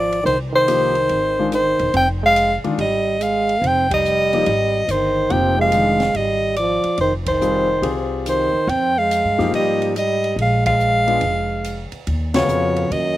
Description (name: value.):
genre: modal jazz.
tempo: 142 BPM.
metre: 4/4.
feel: swing 66% on 8ths.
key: F dorian.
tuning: A4 = 440 Hz.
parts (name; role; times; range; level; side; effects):
clear soprano saxophone; melody; 0.0-13.2 s; C5 to G5; -18 LUFS; left 1 dB; none.
clear trombone; second line; 0.0-13.2 s; F2 to C4; -23 LUFS; right 5 dB; slapback echo.
upright bass; bass; 0.0-13.2 s; E1 to Ab2; -25 LUFS; equal; none.
open jazz drum kit; drums; 0.1-13.0 s; hi-hat, kick drum, ride cymbal, snare drum; -32 LUFS; right 1 dB; none.
warm concert grand piano; accompaniment; 0.7-12.9 s; Db3 to Ab4; -23 LUFS; left 5 dB; none.
room: little or no reverb.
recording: recorded outdoors, with no room sound.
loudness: -16 LUFS.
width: side -15 dB against mid.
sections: 0.0-12.1 A section; 12.1-13.2 B section.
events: band accent 3.8, 7.2, 10.6, 12.3.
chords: 0.0 Fm9; 10.4 Bb7(no3); 12.1 Ebm9.